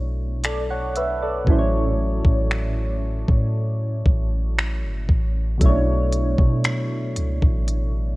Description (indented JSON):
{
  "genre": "contemporary R&B",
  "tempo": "58 BPM",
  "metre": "4/4",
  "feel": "straight",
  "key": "B minor",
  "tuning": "A4 = 440 Hz",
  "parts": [
    { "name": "soft electric-piano-like synth keys", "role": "accompaniment", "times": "0.0-8.2 s", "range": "A2 to F#5", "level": "-25 LUFS", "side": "right 1 dB", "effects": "chorus, phaser" },
    { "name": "warm 808-style bass", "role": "bass", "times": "0.0-8.2 s", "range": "G1 to B2", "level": "-23 LUFS", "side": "equal", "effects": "none" },
    { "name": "smooth R&B drum kit", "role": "drums", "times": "0.4-7.9 s", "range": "finger snaps, hi-hat, kick drum", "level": "-19 LUFS", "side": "equal", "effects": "none" }
  ],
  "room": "little or no reverb",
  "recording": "worn, warbling old tape, cassette tape, warbly pitch drift, faint mains hum",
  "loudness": "-19 LUFS",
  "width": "side -20 dB against mid",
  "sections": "0.0-8.2 A section",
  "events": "hi-hats muted 1.5-5.6",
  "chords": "0.0 Bm11; 1.5 F#m7/A; 5.6 Bm11"
}